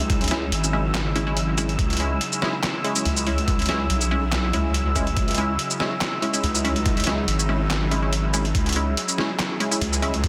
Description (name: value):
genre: deep dubstep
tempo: 142 BPM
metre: 4/4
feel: swing 53% on 16ths, half-time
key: C# minor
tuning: A4 = 439 Hz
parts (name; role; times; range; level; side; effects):
- bowed-like drone; sustained chords; 0.0-10.3 s; C#3 to G#4; -35 LUFS; equal; built-in reverb
- wobble bass; bass; 0.0-10.3 s; G#1 to C#2; -26 LUFS; equal; chorus
- trip hop sampler-style drum kit; drums; 0.0-10.3 s; handclaps, hi-hat, shaker, snare drum; -29 LUFS; equal; overdrive, studio reverb
- wind-like tuned noise texture; texture; 0.0-10.3 s; E6; -34 LUFS; equal; built-in reverb
- electronic kick drum; drums; 0.1-10.3 s; none; -27 LUFS; equal; overdrive, studio reverb
- filtered dub chord stab; stabs; 0.3-10.1 s; G#3 to E4; -29 LUFS; equal; chorus, phaser, dub echo
room: light reverb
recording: dense, heavily limited modern master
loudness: -23 LUFS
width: mono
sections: 0.0-10.3 A section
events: none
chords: 0.0 C#m